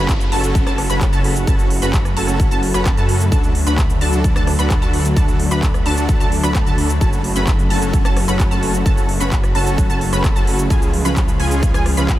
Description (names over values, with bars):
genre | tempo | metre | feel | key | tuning
EDM, festival progressive house | 130 BPM | 4/4 | straight | F# harmonic minor | A4 = 439 Hz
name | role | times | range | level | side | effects
lush unison pad | sustained chords | 0.0-12.2 s | C#3 to F#4 | -23 LUFS | left 1 dB | chorus, sidechain pumping
wide unison pluck | arpeggios | 0.0-12.1 s | G#5 to B5 | -25 LUFS | right 1 dB | ensemble chorus, sidechain pumping, analog delay
dense compressed supersaw | riff | 0.0-12.1 s | C#4 to B4 | -24 LUFS | equal | sidechain pumping, analog delay
wide detuned saw bass | bass | 0.0-12.2 s | F#1 to F#2 | -20 LUFS | equal | chorus, sidechain pumping
downlifter | sound effects | 0.0-3.3 s | none | -36 LUFS | equal | none
big-room dance drum kit | drums | 0.1-12.2 s | cabasa, handclaps, hi-hat, rim click | -26 LUFS | right 1 dB | none
electronic kick drum | drums | 0.1-12.2 s | none | -17 LUFS | equal | none
room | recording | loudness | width
light reverb, digital ambience | none | -14 LUFS | side -14 dB against mid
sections
0.0-12.2 A section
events
none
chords
0.0 F#m; 3.3 D; 7.0 F#m; 10.7 C#